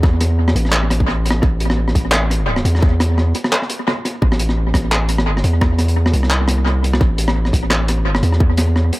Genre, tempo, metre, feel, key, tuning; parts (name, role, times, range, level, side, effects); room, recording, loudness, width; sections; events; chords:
half-time drum and bass; 172 BPM; 4/4; swing 56% on 16ths, half-time; A minor; A4 = 441 Hz
long sustained 808-style bass; bass; 0.0-8.9 s; A1 to E2; -16 LUFS; equal; tube saturation
crunchy breakbeat drum kit; drums; 0.0-9.0 s; handclaps, hi-hat, rim click; -19 LUFS; equal; analog delay
electronic kick drum; drums; 0.0-8.5 s; -15 LUFS; equal
light reverb; echo-heavy mix; -14 LUFS; side -19 dB against mid
0.0-9.0 A section